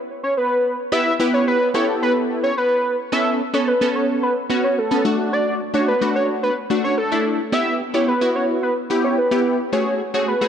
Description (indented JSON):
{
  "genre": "pop",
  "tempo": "109 BPM",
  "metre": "4/4",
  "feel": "straight",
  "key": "A mixolydian",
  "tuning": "A4 = 440 Hz",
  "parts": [
    { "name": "fat analog lead", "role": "melody", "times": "0.2-10.5 s", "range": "A4 to E5", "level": "-20 LUFS", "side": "equal", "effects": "chorus" },
    { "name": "funky polysynth comp", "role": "accompaniment", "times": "0.9-10.5 s", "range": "A3 to B4", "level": "-20 LUFS", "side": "equal", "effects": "chorus" }
  ],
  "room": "moderate lush hall reverb, RT60 2.4 s",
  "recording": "dark, warm production",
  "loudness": "-17 LUFS",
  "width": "side -8 dB against mid",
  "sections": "0.0-3.1 A section; 3.1-10.5 B section",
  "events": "none",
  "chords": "0.0 Em; 3.1 Aadd9; 5.0 D; 7.5 Em; 9.7 F#madd9",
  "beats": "0.37 | 0.92 1.47 2.02 2.57 | 3.12 3.67 4.22 4.78 | 5.33 5.88 6.43 6.98 | 7.53 8.08 8.63 9.18 | 9.73 10.28"
}